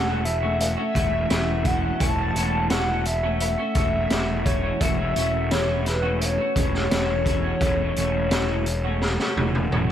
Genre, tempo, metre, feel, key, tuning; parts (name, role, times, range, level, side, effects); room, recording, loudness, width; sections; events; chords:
psychedelic rock; 86 BPM; 4/4; straight; A4 = 440 Hz
hollow square lead; melody; 0.0-9.7 s; B4 to A5; -26 LUFS; left 2 dB; chorus, tape echo
twelve-string electric guitar; riff; 0.0-9.9 s; E3 to F#4; -27 LUFS; right 1 dB; harmonic tremolo, double-tracked left and right, tape echo
fuzz picked electric bass; bass; 0.0-9.9 s; E1; -26 LUFS; equal; overdrive
raw garage drum kit; drums; 0.3-9.9 s; hi-hat, kick drum, snare drum, toms; -26 LUFS; equal
studio ambience; echo-heavy mix; -20 LUFS; side -10 dB against mid
0.0-9.9 A section
drum fill 9.0-9.9
0.0 F#m7/E